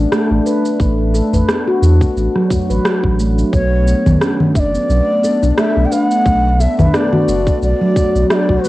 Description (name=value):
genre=organic downtempo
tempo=88 BPM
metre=4/4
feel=swing 56% on 16ths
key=B minor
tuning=A4 = 440 Hz
part: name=warm analog pad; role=sustained chords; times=0.0-8.7 s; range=A3 to D4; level=-22 LUFS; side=left 1 dB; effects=chorus, sidechain pumping, cassette tape, plate reverb
part: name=handpan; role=arpeggios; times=0.0-8.7 s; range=F#3 to B4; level=-17 LUFS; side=equal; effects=cassette tape, tape echo, plate reverb
part: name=warm sub bass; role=bass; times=0.0-8.6 s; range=F#1 to E2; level=-14 LUFS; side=equal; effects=sidechain pumping
part: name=electronic rim click, shaker and congas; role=drums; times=0.1-8.7 s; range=none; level=-18 LUFS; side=equal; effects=cassette tape
part: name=electronic kick drum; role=drums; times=0.8-8.6 s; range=none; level=-17 LUFS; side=equal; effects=cassette tape
part: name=udu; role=percussion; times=1.3-8.1 s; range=none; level=-22 LUFS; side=equal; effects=none
part: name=breathy bass bansuri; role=melody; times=3.5-8.7 s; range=B4 to G5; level=-18 LUFS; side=equal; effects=cassette tape, tape echo, plate reverb
room=moderate studio reverb, RT60 0.5 s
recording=home recording on cassette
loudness=-12 LUFS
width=side -17 dB against mid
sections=0.0-8.7 A section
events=none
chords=0.0 Asus4; 3.5 Bm7